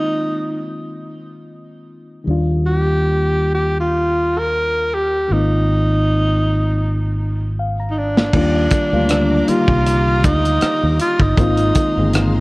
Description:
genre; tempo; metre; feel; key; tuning
R&B, neo-soul; 79 BPM; 4/4; swing 54% on 16ths; Eb major; A4 = 438 Hz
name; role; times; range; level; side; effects
breathy tenor saxophone; melody; 0.0-12.4 s; D4 to Bb4; -19 LUFS; equal; none
reed electric piano; accompaniment; 0.0-12.4 s; D3 to Bb5; -23 LUFS; left 2 dB; phaser
fingered electric bass; bass; 2.3-12.4 s; G1 to Eb2; -18 LUFS; equal; none
tight funk drum kit; drums; 8.2-12.3 s; crash cymbal, hi-hat, kick drum, rim click, snare drum; -18 LUFS; equal; none
warm studio string section; sustained chords; 8.3-12.4 s; G4 to D6; -32 LUFS; equal; none
room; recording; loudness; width
moderate spring reverb, RT60 2.5 s; worn, warbling old tape, cassette tape, warbly pitch drift; -14 LUFS; side -23 dB against mid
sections
0.0-8.3 A section; 8.3-12.4 B section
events
drum fill 6.8-8.3; reed electric piano fill 7.2-8.3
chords
0.0 Ab69; 2.3 Ebmaj9; 5.3 Ab69; 8.3 Ebmaj9; 11.4 Ab69

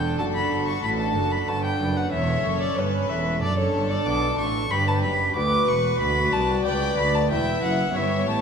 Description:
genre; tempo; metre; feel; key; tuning
classical, baroque-style concerto movement with solo episodes; 93 BPM; 4/4; straight; D major; A4 = 440 Hz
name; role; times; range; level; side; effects
rich chamber violin section; melody; 0.0-8.4 s; F#4 to D5; -34 LUFS; left 3 dB; none
warm violin; melody; 0.0-8.4 s; C#5 to D6; -26 LUFS; left 1 dB; none
warm chamber violin section; second line; 0.0-8.4 s; G4 to E5; -29 LUFS; left 4 dB; none
dark chamber viola section; accompaniment; 0.0-8.4 s; B3 to F#4; -29 LUFS; right 1 dB; none
lute; accompaniment; 0.0-8.4 s; D2 to B4; -33 LUFS; equal; none
rich chamber double bass section; bass; 0.0-8.4 s; E1 to D2; -28 LUFS; right 3 dB; none
warm chamber cello section; bass; 0.0-8.4 s; C2 to B2; -29 LUFS; right 2 dB; none
room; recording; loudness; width
moderate scoring stage reverb, RT60 1.7 s; none; -21 LUFS; side -6 dB against mid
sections
0.0-8.4 A section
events
none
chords
0.0 D; 2.1 A7/E; 3.4 D/F#; 4.7 G; 7.3 C#m7b5/E

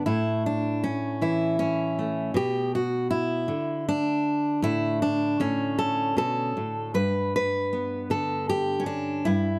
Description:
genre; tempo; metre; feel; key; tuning
folk, solo fingerstyle acoustic guitar; 78 BPM; 3/4; straight; unclear; A4 = 440 Hz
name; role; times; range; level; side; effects
fingerpicked steel-string acoustic guitar; solo; 0.0-9.6 s; G2 to B4; -26 LUFS; equal; none
room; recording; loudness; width
little or no reverb; close, detailed microphones; -26 LUFS; mono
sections
0.0-9.6 A section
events
none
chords
0.1 A; 2.3 Bm; 4.6 Asus4; 5.4 A; 7.0 G

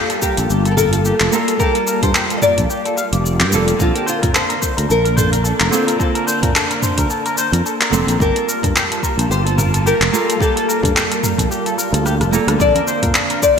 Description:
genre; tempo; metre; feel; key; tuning
sunset chillout; 109 BPM; 4/4; swing 56% on 16ths; unclear; A4 = 437 Hz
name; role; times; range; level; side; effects
nylon-string guitar; melody; 0.0-13.6 s; F4 to Eb5; -20 LUFS; left 3 dB; wide subtle chorus, ping-pong delay
flamenco guitar; accompaniment; 0.0-13.6 s; D3 to A5; -23 LUFS; moving between equal and right 7 dB; auto-pan, ping-pong delay
soft string machine; sustained chords; 0.0-13.6 s; G3 to A5; -24 LUFS; equal; phaser, ensemble chorus
electric guitar with an envelope filter; arpeggios; 0.0-13.6 s; G4 to F5; -24 LUFS; left 2 dB; lush chorus, ping-pong delay
deep house drum kit; drums; 0.1-13.6 s; cabasa, handclaps, hi-hat, rim click, toms; -19 LUFS; equal; gated reverb
electronic kick drum; drums; 0.2-13.6 s; none; -21 LUFS; equal; none
sustaining fretless electric bass; bass; 0.4-13.1 s; F1 to Bb2; -18 LUFS; equal; lush chorus
congas; percussion; 12.8-12.9 s; none; -29 LUFS; right 5 dB; none
room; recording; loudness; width
moderate lush hall reverb, RT60 1.9 s; bright 1980s-style digital production; -14 LUFS; side -6 dB against mid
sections
0.0-13.6 A section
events
drum fill 12.1-12.6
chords
0.0 Gm9; 3.8 Bbmaj9; 8.2 Gm9; 12.6 Bbmaj9

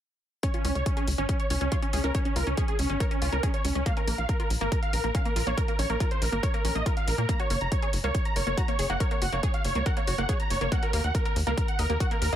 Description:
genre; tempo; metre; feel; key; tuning
uplifting trance; 140 BPM; 4/4; straight; unclear; A4 = 439 Hz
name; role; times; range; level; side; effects
dense compressed supersaw; melody; 0.4-12.4 s; Db4 to Bb5; -30 LUFS; right 1 dB; sidechain pumping, low-pass filter, dub echo
wide unison pluck; arpeggios; 0.4-12.4 s; Bb3 to Eb5; -35 LUFS; left 1 dB; sidechain pumping, dub echo
electronic hi-hat; drums; 0.4-12.4 s; none; -37 LUFS; left 2 dB; none
electronic kick drum; drums; 0.4-12.1 s; none; -28 LUFS; equal; overdrive
tight sequencer bass; bass; 0.6-12.4 s; Gb1 to Bb2; -29 LUFS; equal; sidechain pumping
room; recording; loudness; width
little or no reverb; none; -24 LUFS; side -11 dB against mid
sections
0.4-12.4 A section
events
none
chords
0.4 N.C.; 3.9 Bbm; 7.3 Gb; 10.7 Ebm

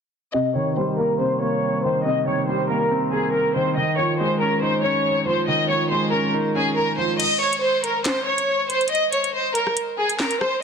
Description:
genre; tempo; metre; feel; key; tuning
hip hop, drill; 140 BPM; 4/4; half-time; C phrygian; A4 = 439 Hz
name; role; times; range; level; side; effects
warm symphonic violin section; melody; 0.3-10.6 s; Ab4 to Eb5; -21 LUFS; equal; low-pass filter, ping-pong delay
felt-muted upright piano; accompaniment; 0.3-7.2 s; C3 to Eb4; -23 LUFS; right 1 dB; low-pass filter
drill drum kit; drums; 7.2-10.5 s; crash cymbal, handclaps, hi-hat, rim click, snare drum; -26 LUFS; equal; vintage 12-bit sampler grit
room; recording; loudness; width
light reverb, small room reverb; dense, heavily limited modern master; -19 LUFS; side -6 dB against mid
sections
0.3-7.2 A section; 7.2-10.6 B section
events
filter sweep 0.3-7.2; kick muted 7.2-10.6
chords
0.3 Cm7; 3.8 Dbadd9; 7.2 N.C.

